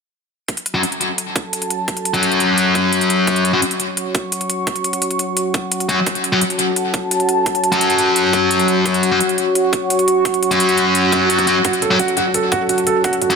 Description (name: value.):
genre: dark technical drum and bass.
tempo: 172 BPM.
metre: 4/4.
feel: straight.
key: F# minor.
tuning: A4 = 441 Hz.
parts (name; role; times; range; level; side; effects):
dark analog pad; sustained chords; 1.0-13.4 s; F#4 to C#6; -19 LUFS; right 1 dB; chorus, sidechain pumping.
electronic hi-hat; drums; 0.5-13.4 s; none; -22 LUFS; equal; studio ambience.
electronic kick drum; drums; 0.5-13.1 s; none; -22 LUFS; right 1 dB; high-pass filter on kick, studio ambience.
sludgy distorted guitar; stabs; 0.7-3.6, 5.9-13.4 s; F#3 to F#4; -16 LUFS; left 2 dB; overdrive, low-pass filter, digital delay.
swell; sound effects; 11.1-11.6 s; none; -22 LUFS; right 3 dB; none.
felt-muted upright piano; arpeggios; 11.6-13.3 s; F#4 to A4; -18 LUFS; right 4 dB; sidechain pumping, digital delay.
room: moderate digital room reverb, RT60 1.0 s, digital ambience.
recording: dense, heavily limited modern master.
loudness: -14 LUFS.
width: side -5 dB against mid.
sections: 0.5-13.4 A section.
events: swell 11.1-11.6.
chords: 0.5 F#m.